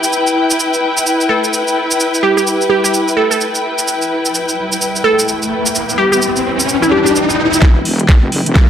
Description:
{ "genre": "bass house", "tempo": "128 BPM", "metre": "4/4", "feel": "swing 61% on 16ths", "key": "E minor", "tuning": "A4 = 437 Hz", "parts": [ { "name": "garage drum kit", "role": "drums", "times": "0.0-8.7 s", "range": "hi-hat, shaker, snare drum", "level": "-18 LUFS", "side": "right 2 dB", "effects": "high-pass filter on cymbals, studio reverb, high-pass filter on perc, high-pass filter on snare, high-pass filter on hats" }, { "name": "dark studio string section", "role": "texture", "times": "0.0-8.7 s", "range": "E4 to G5", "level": "-16 LUFS", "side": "left 2 dB", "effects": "sidechain pumping" }, { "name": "glassy wavetable pluck", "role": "melody", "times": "1.3-7.1 s", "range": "E4 to A4", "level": "-16 LUFS", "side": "right 1 dB", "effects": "chorus, dub echo" }, { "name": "riser", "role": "sound effects", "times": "4.6-8.7 s", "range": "none", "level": "-18 LUFS", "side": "equal", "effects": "none" }, { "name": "wobble bass", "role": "bass", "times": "7.6-8.7 s", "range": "E1 to F#1", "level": "-17 LUFS", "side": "equal", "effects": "chorus, overdrive, sidechain pumping, high-pass filter" }, { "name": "electronic kick drum", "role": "drums", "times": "7.6-8.7 s", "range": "none", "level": "-8 LUFS", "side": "equal", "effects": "studio reverb" } ], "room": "moderate digital room reverb, RT60 1.1 s", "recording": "none", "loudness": "-11 LUFS", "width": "side -9 dB against mid", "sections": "0.0-7.6 A section; 7.6-8.7 B section", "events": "riser 4.6-7.6, 7.6-8.7; build-up 7.6-8.7; drum fill 7.6-8.7", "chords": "0.0 Em; 7.6 Emadd9" }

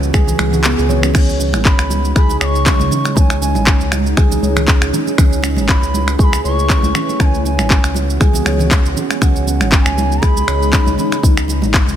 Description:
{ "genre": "afro house", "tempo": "119 BPM", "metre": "4/4", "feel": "swing 55% on 16ths", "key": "unclear", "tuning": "A4 = 440 Hz", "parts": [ { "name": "ethereal airy pad", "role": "sustained chords", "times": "0.0-12.0 s", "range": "C#3 to B4", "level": "-22 LUFS", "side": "left 1 dB", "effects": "ensemble chorus, built-in reverb, sidechain pumping" }, { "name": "round analog bass", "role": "bass", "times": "0.0-12.0 s", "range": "G#1 to C#2", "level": "-18 LUFS", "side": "left 1 dB", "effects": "sidechain pumping" }, { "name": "house drum kit", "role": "drums", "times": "0.0-12.0 s", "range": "crash cymbal, finger snaps, handclaps, shaker", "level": "-19 LUFS", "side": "equal", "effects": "none" }, { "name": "handpan", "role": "arpeggios", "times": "0.1-11.1 s", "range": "B3 to C#5", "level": "-21 LUFS", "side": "right 5 dB", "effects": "sidechain pumping, dub echo" }, { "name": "electronic kick drum", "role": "drums", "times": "0.1-11.8 s", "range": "none", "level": "-13 LUFS", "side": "equal", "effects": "none" }, { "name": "congas", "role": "percussion", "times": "0.1-12.0 s", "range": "none", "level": "-24 LUFS", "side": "right 2 dB", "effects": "none" }, { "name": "bright reedy bansuri", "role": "melody", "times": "1.6-11.2 s", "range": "F#5 to D#6", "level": "-23 LUFS", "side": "equal", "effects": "dub echo" } ], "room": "little or no reverb", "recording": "none", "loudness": "-12 LUFS", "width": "side -10 dB against mid", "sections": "0.0-12.0 A section", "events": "kick drops out 0.6-1.1", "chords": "0.0 E; 1.1 G#sus4; 5.2 Aadd9; 7.2 E; 9.2 C#5; 11.2 G#sus4" }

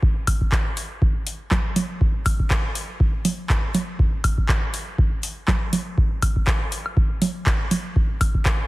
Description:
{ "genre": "house", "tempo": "121 BPM", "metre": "4/4", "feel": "swing 55% on 16ths", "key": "none", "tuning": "none", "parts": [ { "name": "electronic kick drum", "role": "drums", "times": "0.0-8.6 s", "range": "none", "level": "-20 LUFS", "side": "equal", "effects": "none" }, { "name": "booming analog drum machine", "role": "drums", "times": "0.3-8.6 s", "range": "congas, handclaps, hi-hat, woodblock", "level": "-25 LUFS", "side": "right 1 dB", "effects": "none" } ], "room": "little or no reverb", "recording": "heavily compressed radio sound, multiband compression", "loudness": "-20 LUFS", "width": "side -20 dB against mid", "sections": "0.0-8.7 A section", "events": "none", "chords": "none" }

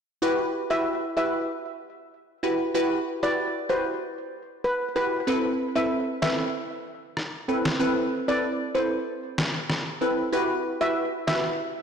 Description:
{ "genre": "dancehall", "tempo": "95 BPM", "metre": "4/4", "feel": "straight", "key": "E minor", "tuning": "A4 = 441 Hz", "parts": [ { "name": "glassy wavetable pluck", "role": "accompaniment", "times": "0.2-11.4 s", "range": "C4 to B4", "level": "-26 LUFS", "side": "equal", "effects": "chorus" }, { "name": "steel pan", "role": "melody", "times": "0.7-11.5 s", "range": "B4 to E5", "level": "-28 LUFS", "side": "equal", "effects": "ping-pong delay" }, { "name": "electronic snare drum, finger snaps and rim click", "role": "drums", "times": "6.2-11.4 s", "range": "none", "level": "-28 LUFS", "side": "equal", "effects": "none" } ], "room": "moderate lush hall reverb, RT60 1.8 s, small room ambience", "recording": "blown-out, overdriven recording, overdrive", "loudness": "-24 LUFS", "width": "side -7 dB against mid", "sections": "0.2-10.3 A section; 10.3-11.8 B section", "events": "kick muted 10.3-11.8", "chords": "0.2 Emadd9; 5.3 Amadd9; 10.3 Emadd9" }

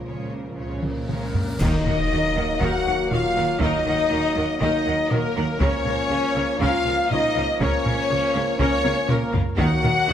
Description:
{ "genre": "cinematic, epic orchestral film score", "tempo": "120 BPM", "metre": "4/4", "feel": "straight", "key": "Eb minor", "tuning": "A4 = 440 Hz", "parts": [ { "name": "rich symphonic violin section", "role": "melody", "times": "0.0-10.1 s", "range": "Bb4 to Gb5", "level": "-29 LUFS", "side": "left 4 dB", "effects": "none" }, { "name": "warm symphonic violin section", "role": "second line", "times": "0.0-10.1 s", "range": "Db4 to Gb5", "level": "-32 LUFS", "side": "left 3 dB", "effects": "none" }, { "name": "rich symphonic viola section", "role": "accompaniment", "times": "0.0-10.1 s", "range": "Bb3 to Gb5", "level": "-32 LUFS", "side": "equal", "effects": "none" }, { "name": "clear trombone section", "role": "sustained chords", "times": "0.0-10.1 s", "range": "Bb2 to Bb3", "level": "-31 LUFS", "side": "right 4 dB", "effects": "none" }, { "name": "warm French horn section", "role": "sustained chords", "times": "0.0-10.1 s", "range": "Bb3 to Bb4", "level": "-27 LUFS", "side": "left 5 dB", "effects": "none" }, { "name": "timpani", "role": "percussion", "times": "0.0-2.3, 9.6-10.1 s", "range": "Bb2 to Eb3", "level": "-29 LUFS", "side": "left 1 dB", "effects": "none" }, { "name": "cymbal swell and impact", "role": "sound effects", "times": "1.0-3.6 s", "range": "none", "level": "-36 LUFS", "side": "equal", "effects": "none" }, { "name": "rich symphonic cello section", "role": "bass", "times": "0.1-10.1 s", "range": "Db3 to Eb3", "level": "-30 LUFS", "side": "right 2 dB", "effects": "none" }, { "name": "warm chamber double bass section", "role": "bass", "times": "0.1-10.1 s", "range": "Db2 to Eb2", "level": "-30 LUFS", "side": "right 3 dB", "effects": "none" }, { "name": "taiko ensemble", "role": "drums", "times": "0.8-10.1 s", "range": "none", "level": "-26 LUFS", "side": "equal", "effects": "none" }, { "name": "hollow concert flute", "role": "second line", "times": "1.1-10.1 s", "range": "Bb4 to Gb5", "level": "-30 LUFS", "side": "left 2 dB", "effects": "none" }, { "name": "mellow trumpet section", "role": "stabs", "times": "1.1-10.1 s", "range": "Bb4 to Gb5", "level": "-29 LUFS", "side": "equal", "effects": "none" }, { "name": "clash cymbals and concert bass drum", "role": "percussion", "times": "1.6-2.6 s", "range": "none", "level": "-33 LUFS", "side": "equal", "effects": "none" } ], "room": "moderate scoring stage reverb, RT60 1.9 s", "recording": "close, detailed microphones", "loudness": "-19 LUFS", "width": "side -9 dB against mid", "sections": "0.0-1.6 A section; 1.6-10.1 B section", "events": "timpani fill 0.0-1.6; drum fill 0.8-1.6, 8.8-9.6; cymbal swell 1.0-1.6; band accent 1.6-2.1; impact 1.6-3.6", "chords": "0.0 Bbm/Db; 1.6 Ebm; 5.6 Bbm/Db; 9.6 Ebm" }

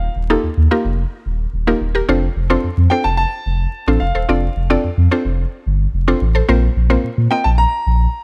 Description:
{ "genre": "dance-pop", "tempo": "109 BPM", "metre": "4/4", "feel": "straight", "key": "unclear", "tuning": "A4 = 440 Hz", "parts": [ { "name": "clear concert grand piano", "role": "melody", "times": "0.0-8.2 s", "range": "F5 to Bb5", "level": "-23 LUFS", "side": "equal", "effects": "slapback echo" }, { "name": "mallet-like synth pluck", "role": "accompaniment", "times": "0.0-7.8 s", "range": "Bb3 to Eb5", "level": "-20 LUFS", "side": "equal", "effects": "chorus" }, { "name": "warm sub bass", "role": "bass", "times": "0.0-8.1 s", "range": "Eb1 to Bb2", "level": "-18 LUFS", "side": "equal", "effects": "none" } ], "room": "small room ambience", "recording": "vinyl crackle", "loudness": "-17 LUFS", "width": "mono", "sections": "0.0-8.2 A section", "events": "none", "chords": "0.0 Ebadd9; 2.1 F6; 6.5 Bbsus2" }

